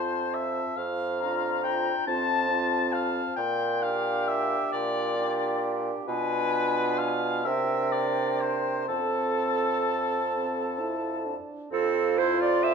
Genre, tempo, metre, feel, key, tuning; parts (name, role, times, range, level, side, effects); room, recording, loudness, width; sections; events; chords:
classical, slow romantic movement for wind quintet; 41-47 BPM (dotted quarters); 6/8; rubato; F major; A4 = 440 Hz
mellow silver concert flute; melody; 0.0-12.7 s; G5 to C6; -32 LUFS; left 9 dB
warm oboe; second line; 0.0-12.7 s; C4 to A5; -30 LUFS; left 3 dB
clear clarinet; accompaniment; 0.0-12.7 s; F4 to E5; -32 LUFS; right 8 dB
warm French horn; accompaniment; 0.0-12.7 s; C4 to F4; -35 LUFS; left 1 dB
warm bassoon; bass; 0.0-12.7 s; F2 to C3; -30 LUFS; right 3 dB
moderate recital hall reverb, RT60 1.5 s; minimal, uncompressed stereo recording; -25 LUFS; side -6 dB against mid
0.0-11.7 A section; 11.7-12.7 B section
0.0 F; 0.8 Bb/F; 2.1 F; 3.4 Gm/Bb; 6.1 Bdim7; 7.5 Csus2; 8.9 F